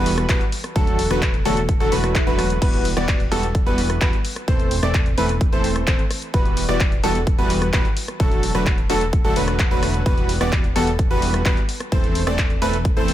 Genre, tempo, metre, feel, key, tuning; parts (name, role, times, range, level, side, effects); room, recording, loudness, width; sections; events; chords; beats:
EDM, festival progressive house; 129 BPM; 4/4; straight; E minor; A4 = 439 Hz
clear baby grand piano; arpeggios; 0.0-13.1 s; A4 to D5; -27 LUFS; left 1 dB; sidechain pumping, tape echo
supersaw stab; riff; 0.0-13.1 s; D3 to D5; -23 LUFS; right 1 dB; sidechain pumping, tape echo
fat analog bass; bass; 0.0-13.1 s; E1; -24 LUFS; equal; sidechain pumping
big-room dance drum kit; drums; 0.1-13.1 s; crash cymbal, handclaps, hi-hat, rim click; -27 LUFS; left 1 dB
electronic kick drum; drums; 0.3-12.9 s; -20 LUFS; equal
swell; sound effects; 1.9-2.6 s; -33 LUFS; right 2 dB
light reverb; -17 LUFS; side -12 dB against mid
0.0-13.1 A section
swell 1.9-2.6
0.0 Emadd9; 0.8 D/E; 2.6 Emadd9; 4.5 Am/E; 6.3 Emadd9; 8.2 D/E; 10.1 Emadd9; 11.9 Am/E
0.29 | 0.76 1.22 1.69 2.15 | 2.62 3.08 3.55 4.01 | 4.48 4.94 5.41 5.87 | 6.34 6.80 7.27 7.73 | 8.20 8.66 9.13 9.60 | 10.06 10.53 10.99 11.46 | 11.92 12.38 12.85